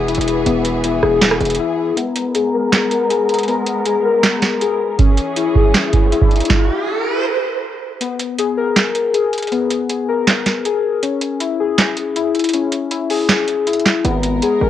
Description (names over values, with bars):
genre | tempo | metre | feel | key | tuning
hip hop, trap | 159 BPM | 4/4 | half-time | G# minor | A4 = 440 Hz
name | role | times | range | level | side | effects
rich symphonic string section | sustained chords | 0.0-6.5, 14.0-14.7 s | E3 to A#4 | -24 LUFS | right 1 dB | low-pass filter, cassette tape
warbly lo-fi synth keys | arpeggios | 0.0-14.7 s | B3 to A#4 | -17 LUFS | left 5 dB | chorus, low-pass filter, cassette tape, analog delay
distorted 808-style bass | bass | 0.0-1.6, 14.0-14.7 s | E1 to G#1 | -21 LUFS | right 2 dB | distortion
booming analog drum machine | drums | 0.1-14.5 s | handclaps, hi-hat, kick drum, rim click, snare drum | -16 LUFS | right 2 dB | none
riser | sound effects | 5.7-7.3 s | none | -22 LUFS | right 4 dB | none
room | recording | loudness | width
light reverb | home recording on cassette | -14 LUFS | side -11 dB against mid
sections
0.0-2.0 A section; 2.0-8.0 B section; 8.0-14.7 C section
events
break 1.6-2.0; riser 5.7-8.0; stop 6.5-8.0; kick muted 8.0-14.0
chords
0.0 E; 2.0 G#madd9; 5.0 C#m; 8.0 G#madd9; 11.0 C#m; 14.0 G#madd9